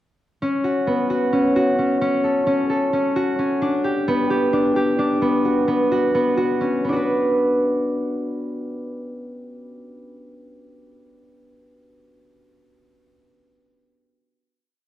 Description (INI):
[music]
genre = contemporary instrumental, contemporary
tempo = 260 BPM (eighths)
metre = 7/8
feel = straight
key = B minor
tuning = A4 = 439 Hz
[part]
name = concert harp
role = solo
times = 0.4-11.6 s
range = B3 to B4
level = -19 LUFS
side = equal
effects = none
[sound]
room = wet recital hall reverb, RT60 1.5 s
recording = dark, warm production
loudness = -18 LUFS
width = side -13 dB against mid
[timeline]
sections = 0.4-6.8 A section; 6.8-10.1 final chord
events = none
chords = 0.4 Bsus2; 2.0 A; 3.6 G; 5.2 B5; 6.8 Bm